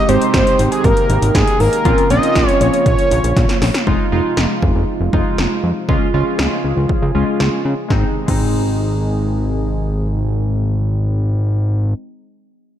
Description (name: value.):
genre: synth-pop.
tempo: 119 BPM.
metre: 4/4.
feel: straight.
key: Ab major.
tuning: A4 = 440 Hz.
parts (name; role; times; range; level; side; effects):
fat analog lead; melody; 0.0-3.6 s; Ab4 to Eb5; -16 LUFS; equal; chorus, ping-pong delay.
warm analog keys; accompaniment; 0.0-12.0 s; Ab3 to G4; -21 LUFS; equal; chorus, low-pass filter.
brassy analog pad; sustained chords; 0.0-11.6 s; C3 to Ab4; -24 LUFS; equal; chorus, low-pass filter.
fat analog bass; bass; 0.1-11.9 s; F1 to Db3; -17 LUFS; equal; none.
80s electronic pad drums; drums; 0.1-8.4 s; crash cymbal, hi-hat, kick drum, snare drum; -18 LUFS; equal; none.
room: moderate scoring stage reverb, RT60 2.0 s, digital ambience.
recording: dark, warm production.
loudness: -13 LUFS.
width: side -10 dB against mid.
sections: 0.0-3.9 A section; 3.9-7.9 B section; 7.9-11.9 C section.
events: drum fill 3.4-3.9; filter sweep 3.9-7.9.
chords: 0.0 Abmaj7; 1.9 Bbmadd9; 3.9 Fm7; 5.9 Db; 7.9 Ab.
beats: 0.34 0.84 1.35 | 1.85 2.36 2.86 3.37 | 3.87 4.37 4.88 5.38 | 5.89 6.39 6.89 7.40 | 7.90 8.41 8.91 9.42 | 9.92 10.42 10.93 11.43.